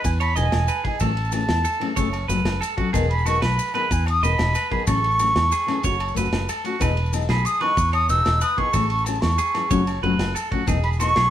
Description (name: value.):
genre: highlife guitar band.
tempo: 124 BPM (dotted quarters).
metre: 12/8.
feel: straight.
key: E major.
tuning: A4 = 439 Hz.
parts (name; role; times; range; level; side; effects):
concert flute; melody; 0.0-11.3 s; G#5 to E6; -22 LUFS; right 1 dB; none.
clean electric guitar; arpeggios; 0.0-11.3 s; D#4 to D#5; -28 LUFS; right 5 dB; none.
fingered electric bass; bass; 0.0-11.3 s; E1 to E2; -23 LUFS; equal; none.
warm soul drum kit; drums; 0.0-11.2 s; kick drum, ride cymbal, snare drum; -29 LUFS; equal; none.
maracas; percussion; 0.0-11.3 s; none; -36 LUFS; left 5 dB; none.
agogo bells; percussion; 0.2-11.3 s; none; -34 LUFS; left 4 dB; none.
fingerpicked steel-string acoustic guitar; accompaniment; 0.4-11.1 s; D#3 to A4; -26 LUFS; left 5 dB; none.
room: moderate studio reverb, RT60 0.6 s.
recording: band playing live in one room.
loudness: -19 LUFS.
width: side -11 dB against mid.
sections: 0.0-11.3 A section.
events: none.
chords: 0.0 Emaj7; 1.0 Amaj7; 2.0 F#m; 2.9 Emaj7; 4.9 Amaj7; 5.8 F#m; 6.8 Emaj7; 8.7 Amaj7; 9.7 F#m; 10.7 Emaj7.